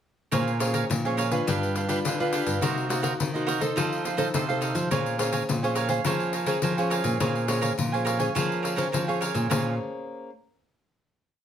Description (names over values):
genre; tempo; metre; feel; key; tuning
samba and choro; 105 BPM; 4/4; straight; Bb minor; A4 = 440 Hz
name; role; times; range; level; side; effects
cavaquinho; accompaniment; 0.3-9.7 s; D4 to Ab5; -29 LUFS; right 6 dB; none
nylon-string guitar; accompaniment; 0.3-10.3 s; C3 to C5; -29 LUFS; left 2 dB; none
nylon-string guitar; bass; 0.3-9.8 s; G2 to F3; -29 LUFS; equal; none
pandeiro; percussion; 0.3-9.6 s; none; -30 LUFS; left 5 dB; none
room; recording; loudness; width
moderate studio reverb, RT60 0.7 s; none; -24 LUFS; side -9 dB against mid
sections
0.3-9.5 A section; 9.5-11.4 final chord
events
none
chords
0.3 Bbm9; 1.5 G7; 2.6 Cm7b5; 3.8 F7; 4.9 Bbm9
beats
| 0.32 0.90 1.47 2.04 | 2.62 3.19 3.77 4.34 | 4.91 5.49 6.06 6.63 | 7.21 7.78 8.35 8.93 | 9.50 10.08